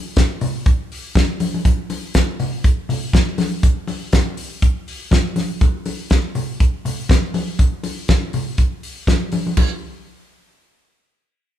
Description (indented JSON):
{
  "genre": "disco",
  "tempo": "121 BPM",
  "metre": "4/4",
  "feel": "swing 56% on 16ths",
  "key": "none",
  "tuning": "none",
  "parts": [
    { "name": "damped 70s drum kit", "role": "drums", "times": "0.2-9.7 s", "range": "crash cymbal, hi-hat, kick drum, snare drum", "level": "-17 LUFS", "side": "equal", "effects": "none" },
    { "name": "congas", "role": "percussion", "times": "0.2-9.8 s", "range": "none", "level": "-23 LUFS", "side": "left 3 dB", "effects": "none" }
  ],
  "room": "light reverb",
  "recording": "band playing live in one room",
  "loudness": "-17 LUFS",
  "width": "side -11 dB against mid",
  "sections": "0.0-9.6 A section; 9.6-11.6 B section",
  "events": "none",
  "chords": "none"
}